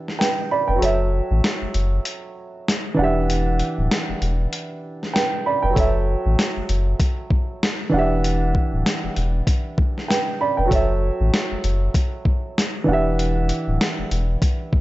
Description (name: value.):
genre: hip hop, boom-bap hip-hop.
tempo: 97 BPM.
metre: 4/4.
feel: swing 59% on 16ths.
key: unclear.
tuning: A4 = 437 Hz.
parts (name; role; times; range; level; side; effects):
dark grand piano; accompaniment; 0.0-14.8 s; E3 to B5; -23 LUFS; right 2 dB; cassette tape.
dusty soul sampler-style drum kit; drums; 0.1-14.8 s; hi-hat, kick drum, snare drum; -22 LUFS; left 1 dB; overdrive.
warm sub bass; bass; 0.7-14.4 s; D1 to A1; -21 LUFS; equal; none.
room: little or no reverb.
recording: nothing above 7.8 kHz.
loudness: -18 LUFS.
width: side -17 dB against mid.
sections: 0.0-14.8 A section.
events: break 0.0-5.8.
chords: 0.0 Em7; 0.8 F#m7; 3.0 Em7; 5.8 F#m7; 7.9 Em7; 10.7 F#m7; 12.9 Em7.